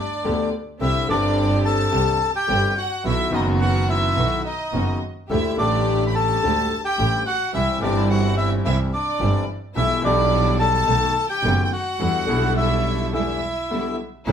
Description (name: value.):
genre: tango.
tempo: 107 BPM.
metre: 4/4.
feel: rubato.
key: E minor.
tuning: A4 = 443 Hz.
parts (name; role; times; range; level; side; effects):
bandoneon; melody; 0.0-14.3 s; D4 to B5; -23 LUFS; left 1 dB; none.
clear studio violin section; second line; 0.0-14.3 s; D5 to B5; -28 LUFS; equal; none.
bright concert grand piano; accompaniment; 0.2-14.3 s; F#1 to G#4; -25 LUFS; left 4 dB; none.
warm studio string section; stabs; 0.2-14.3 s; G3 to G4; -29 LUFS; right 3 dB; none.
clear double bass; bass; 0.2-14.3 s; F#1 to E2; -23 LUFS; right 2 dB; none.
room: moderate studio reverb, RT60 0.8 s.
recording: band playing live in one room.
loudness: -18 LUFS.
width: side -8 dB against mid.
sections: 0.0-14.3 A section.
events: break 13.1-14.3.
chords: 0.0 Gadd9; 0.8 Csus2; 3.0 B; 5.3 Dsus4; 7.5 C; 9.8 Em/B; 10.9 B7; 12.0 Em7.